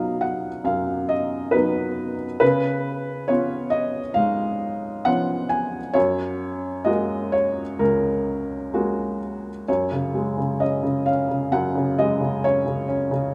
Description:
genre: classical, lyrical solo piano.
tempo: 66 BPM.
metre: 4/4.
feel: uneven beats, rubato.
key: F# major.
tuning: A4 = 438 Hz.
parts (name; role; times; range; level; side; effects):
felt-muted upright piano; solo; 0.0-13.3 s; C#2 to G#5; -23 LUFS; equal; none.
room: moderate plate reverb, RT60 2.8 s.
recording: none.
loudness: -23 LUFS.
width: mono.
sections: 0.0-9.7 A section; 9.7-13.3 B section.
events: none.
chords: 0.0 B; 2.4 C#7; 6.0 F#add9; 9.7 F#sus2.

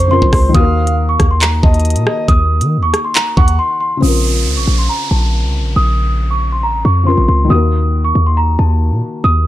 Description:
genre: hip hop, drill.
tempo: 138 BPM.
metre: 4/4.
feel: half-time.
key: Bb harmonic minor.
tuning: A4 = 443 Hz.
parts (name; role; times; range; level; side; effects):
celesta; melody; 0.0-9.5 s; A5 to Eb6; -18 LUFS; equal; low-pass filter, digital delay.
breathy flute-like synth lead; second line; 0.0-3.6 s; C5 to Gb5; -22 LUFS; right 3 dB; chorus, digital delay.
felt-muted upright piano; accompaniment; 0.0-9.5 s; Db3 to Bb4; -21 LUFS; left 4 dB; low-pass filter.
hard-hitting 808-style bass; bass; 0.0-9.5 s; A1 to Eb3; -13 LUFS; equal; none.
drill drum kit; drums; 0.0-3.6 s; handclaps, hi-hat, kick drum, rim click; -13 LUFS; equal; vintage 12-bit sampler grit.
downlifter; sound effects; 4.0-7.5 s; none; -23 LUFS; right 4 dB; none.
room: little or no reverb.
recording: none.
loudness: -11 LUFS.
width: side -14 dB against mid.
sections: 0.0-4.0 A section; 4.0-9.5 B section.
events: break 3.6-4.0; filter sweep 4.0-9.5.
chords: 0.0 Bbmadd9; 0.5 Ebm; 4.0 Bbmadd9; 7.5 Ebm.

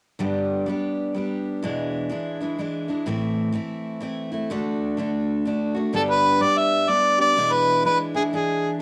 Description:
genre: country.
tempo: 126 BPM.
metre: 3/4.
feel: swing 63% on 8ths.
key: G major.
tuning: A4 = 440 Hz.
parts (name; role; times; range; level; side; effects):
picked steel-string acoustic guitar; accompaniment; 0.2-8.8 s; E2 to G4; -27 LUFS; equal; cassette tape.
warm harmonica; melody; 6.0-8.7 s; G#4 to E5; -21 LUFS; equal; cassette tape.
room: wet small room reverb, RT60 0.5 s.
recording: home recording on cassette.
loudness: -23 LUFS.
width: mono.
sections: 0.2-5.9 A section; 5.9-8.8 B section.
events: none.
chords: 0.2 G; 1.6 E7; 3.1 Am; 4.5 D; 5.9 G; 7.4 E7.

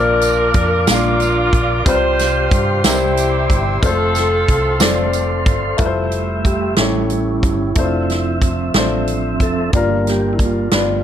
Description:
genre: slow gospel.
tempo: 61 BPM (dotted quarters).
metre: 6/8.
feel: straight.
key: F major.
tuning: A4 = 440 Hz.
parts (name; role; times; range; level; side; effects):
warm saxophone section; melody; 0.0-5.5 s; Bb3 to C5; -18 LUFS; equal; none.
warm baby grand piano; accompaniment; 0.0-11.0 s; G2 to F5; -21 LUFS; left 5 dB; none.
mellow tonewheel organ; sustained chords; 0.0-11.0 s; F3 to D6; -21 LUFS; right 3 dB; slow rotary speaker.
hollow-body short-scale fingered electric bass; bass; 0.0-11.0 s; F1 to G2; -21 LUFS; equal; none.
swinging big-band drum kit; drums; 0.2-10.9 s; hi-hat, kick drum, snare drum; -18 LUFS; right 1 dB; none.
tambourine; percussion; 0.2-5.4 s; none; -28 LUFS; right 11 dB; none.
room: light reverb, small room ambience.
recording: none.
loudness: -14 LUFS.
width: side -9 dB against mid.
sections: 0.0-5.8 A section; 5.8-11.0 B section.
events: tonewheel organ solo 5.8-11.0.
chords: 0.0 Bb; 1.9 Csus4; 2.8 C; 3.8 F; 5.8 Fmaj7; 6.8 A7; 7.8 Dm7/F; 9.7 Gm7.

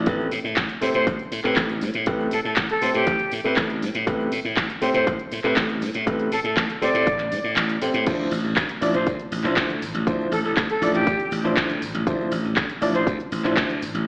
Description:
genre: nu-disco, nu disco.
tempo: 120 BPM.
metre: 4/4.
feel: straight.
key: D dorian.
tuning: A4 = 438 Hz.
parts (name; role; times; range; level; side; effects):
dark baby grand piano; accompaniment; 0.0-13.7 s; F3 to D5; -28 LUFS; equal; sidechain pumping, slapback echo.
glassy slap bass; bass; 0.0-14.0 s; A1 to A2; -28 LUFS; equal; none.
electronic kick drum; drums; 0.1-13.7 s; none; -29 LUFS; equal; none.
house drum kit; drums; 0.1-14.0 s; crash cymbal, handclaps, hi-hat; -29 LUFS; equal; none.
egg shaker; percussion; 0.1-14.1 s; none; -54 LUFS; equal; none.
breathy bright jazz flute; melody; 0.9-13.1 s; G4 to D5; -28 LUFS; equal; analog delay.
room: moderate echo chamber reverb, RT60 1.4 s, small room ambience.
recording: played on a big sound system in a bare room, large studio reverb, AM radio sound.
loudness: -23 LUFS.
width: mono.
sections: 0.0-14.1 A section.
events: kick drops out 7.6-8.1.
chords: 0.1 Am9; 8.1 Dm9.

